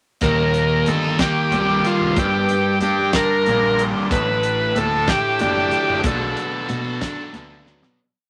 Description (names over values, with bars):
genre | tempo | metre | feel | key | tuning
psychedelic rock | 62 BPM (dotted quarters) | 6/8 | straight | unclear | A4 = 440 Hz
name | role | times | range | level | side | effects
overdriven combo organ | melody | 0.2-7.6 s | F4 to B4 | -22 LUFS | equal | none
tonewheel organ | sustained chords | 0.2-8.0 s | D3 to A4 | -34 LUFS | equal | none
fuzz guitar | riff | 0.2-8.0 s | Eb2 to A4 | -24 LUFS | equal | distortion, phaser
fuzz picked electric bass | bass | 0.2-8.0 s | C1 to B2 | -30 LUFS | equal | overdrive
damped 70s drum kit | drums | 0.2-8.0 s | hi-hat, kick drum, snare drum | -26 LUFS | equal | none
congas | percussion | 0.2-7.7 s | none | -33 LUFS | equal | none
room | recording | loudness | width
moderate studio reverb, RT60 0.6 s | none | -19 LUFS | mono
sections
0.2-8.0 pre-chorus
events
fade-out 6.0-8.0; drum fill 7.7-8.0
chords
0.2 Eb; 2.2 Gm; 4.1 Asus4; 6.0 Bm7